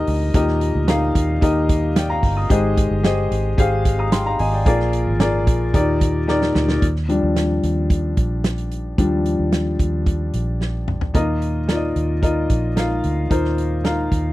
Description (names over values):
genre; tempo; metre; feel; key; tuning
piano-driven pop; 111 BPM; 4/4; straight; Eb major; A4 = 439 Hz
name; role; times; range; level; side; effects
warm upright piano; accompaniment; 0.0-14.3 s; Bb2 to Eb6; -20 LUFS; left 2 dB; none
vintage muted fingered electric bass; bass; 0.0-14.3 s; G1 to Eb2; -22 LUFS; right 1 dB; none
loose indie drum kit; drums; 0.1-14.2 s; hi-hat, kick drum, snare drum, toms; -20 LUFS; right 1 dB; none
room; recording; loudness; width
little or no reverb; dry, close 1970s-style studio recording; -17 LUFS; side -17 dB against mid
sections
0.0-6.8 A section; 6.8-11.1 B section; 11.1-14.3 C section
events
drum fill 6.3-6.8, 10.6-11.1; upright piano solo 6.8-11.1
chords
0.0 Eb; 2.5 Abmaj7; 4.7 Bb7; 5.7 Ebmaj7; 11.1 Ebsus2